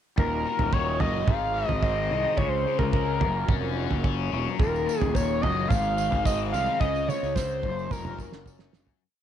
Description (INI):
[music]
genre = psychedelic rock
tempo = 109 BPM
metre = 4/4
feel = straight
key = unclear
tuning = A4 = 440 Hz
[part]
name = overdriven synth lead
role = melody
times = 0.2-8.5 s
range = Bb4 to F5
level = -28 LUFS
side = equal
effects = distortion, chorus, tape echo
[part]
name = percussive tonewheel organ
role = sustained chords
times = 0.2-9.0 s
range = Gb3 to Ab4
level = -39 LUFS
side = right 12 dB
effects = slow rotary speaker
[part]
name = cranked stack guitar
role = riff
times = 0.2-9.0 s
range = Eb2 to Db4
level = -31 LUFS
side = left 14 dB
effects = overdrive, phaser
[part]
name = fuzz fingered electric bass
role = bass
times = 0.2-8.9 s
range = Eb1 to Db2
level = -30 LUFS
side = equal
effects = overdrive
[part]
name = cloth-damped thuddy drum kit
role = drums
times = 0.2-9.0 s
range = kick drum, snare drum, toms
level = -26 LUFS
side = right 2 dB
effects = none
[part]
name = tambourine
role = percussion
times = 4.6-9.0 s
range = none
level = -45 LUFS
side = right 17 dB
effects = none
[sound]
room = light reverb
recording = 1960s-style stereo with parts hard left and right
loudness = -23 LUFS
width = side -10 dB against mid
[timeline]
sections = 0.2-9.0 verse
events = fade-out 6.8-9.0; drum fill 6.8-9.0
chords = 0.2 Ebmadd9; 1.3 Ab; 2.4 Dbmaj7; 3.2 Gbmaj7; 4.6 Ebmadd9; 5.7 Ab; 6.8 Dbmaj7; 7.6 Gbmaj7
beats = | 0.18 0.73 1.28 1.84 | 2.39 2.94 3.49 4.05 | 4.60 5.15 5.71 6.26 | 6.81 7.36 7.91 8.46